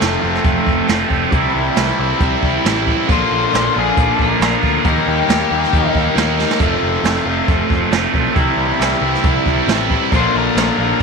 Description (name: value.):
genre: classic rock.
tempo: 136 BPM.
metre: 4/4.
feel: straight.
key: F major.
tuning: A4 = 441 Hz.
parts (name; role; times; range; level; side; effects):
raw garage guitar; riff; 0.0-11.0 s; F2 to G4; -18 LUFS; right 14 dB; overdrive, phaser.
tight distorted guitar; riff; 0.0-11.0 s; Bb2 to F4; -19 LUFS; left 13 dB; distortion.
fuzz picked electric bass; bass; 0.0-11.0 s; F1 to Eb2; -22 LUFS; left 1 dB; overdrive.
jazz brush drum kit; drums; 0.0-11.0 s; hi-hat, kick drum, snare drum; -19 LUFS; right 2 dB; none.
octave-fuzz lead guitar; second line; 3.1-5.9, 10.2-11.0 s; G4 to C5; -20 LUFS; left 12 dB; distortion.
room: light reverb, studio ambience.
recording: 1960s-style stereo with parts hard left and right.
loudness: -13 LUFS.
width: side -4 dB against mid.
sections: 0.0-11.0 A section.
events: drum fill 6.4.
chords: 0.0 F; 1.3 C; 3.1 Bb; 4.9 Eb; 6.6 F; 8.4 C; 10.1 Bb.